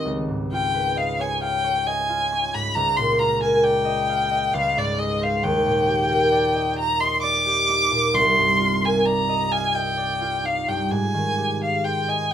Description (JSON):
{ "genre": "classical, impressionist duo for violin and harp", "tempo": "66 BPM", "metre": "3/4", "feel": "rubato", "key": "Eb major", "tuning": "A4 = 440 Hz", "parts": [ { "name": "rich violin", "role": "melody", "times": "0.0-12.3 s", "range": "D5 to D6", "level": "-21 LUFS", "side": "left 1 dB", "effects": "none" }, { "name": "concert harp", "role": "accompaniment", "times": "0.0-12.3 s", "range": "C2 to G5", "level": "-23 LUFS", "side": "equal", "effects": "none" } ], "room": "light reverb", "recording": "close, detailed microphones", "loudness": "-19 LUFS", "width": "side -9 dB against mid", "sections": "0.0-12.3 A section", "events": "none", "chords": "0.1 Db9; 2.8 Ebmaj9/Db; 4.5 Fm7/Db; 5.4 Ebmaj7; 8.2 Cm11; 10.9 Abmaj7" }